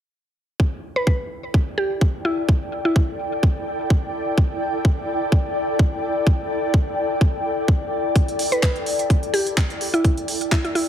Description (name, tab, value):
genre	bass house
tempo	127 BPM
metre	4/4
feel	swing 54% on 16ths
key	E minor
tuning	A4 = 440 Hz
part	electronic kick drum	drums	0.6-10.6 s	none	-19 LUFS	equal	none
part	ethereal airy pad	texture	1.9-10.9 s	E4 to G5	-25 LUFS	left 1 dB	ensemble chorus, built-in reverb, sidechain pumping
part	mallet-like synth pluck	melody	1.0-3.2, 8.5-10.9 s	E4 to B4	-23 LUFS	equal	chorus, cassette tape, digital delay
part	garage drum kit	drums	8.2-10.9 s	handclaps, hi-hat	-26 LUFS	right 1 dB	none
room	light reverb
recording	heavily compressed radio sound, multiband compression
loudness	-19 LUFS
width	side -10 dB against mid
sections	0.6-10.9 A section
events	none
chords	0.6 Em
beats	| 0.60 1.07 1.54 2.01 | 2.49 2.96 3.43 3.90 | 4.38 4.85 5.32 5.79 | 6.27 6.74 7.21 7.68 | 8.15 8.63 9.10 9.57 | 10.04 10.52